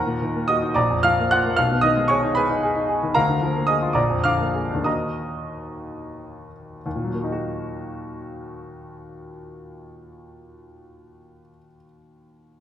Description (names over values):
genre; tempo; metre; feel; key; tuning
classical, romantic character piece for solo piano; 57-78 BPM (dotted quarters); 6/8; rubato; Eb minor; A4 = 442 Hz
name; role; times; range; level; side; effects
clear grand piano; solo; 0.0-12.6 s; Bb1 to Gb6; -21 LUFS; equal; none
room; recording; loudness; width
moderate recital hall reverb, RT60 1.4 s; minimal, uncompressed stereo recording; -19 LUFS; side -10 dB against mid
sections
0.0-6.8 A section; 6.8-10.7 B section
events
slowing down 2.4-6.8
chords
0.0 Ebm; 0.8 Bb; 1.6 Abm/Cb; 3.1 Bb7/D; 4.0 Bb7; 4.9 Ebm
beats
0.76 | 1.58 2.37 | 3.15 3.97 | 4.86 5.83 | 6.85 7.87 | 8.84 9.79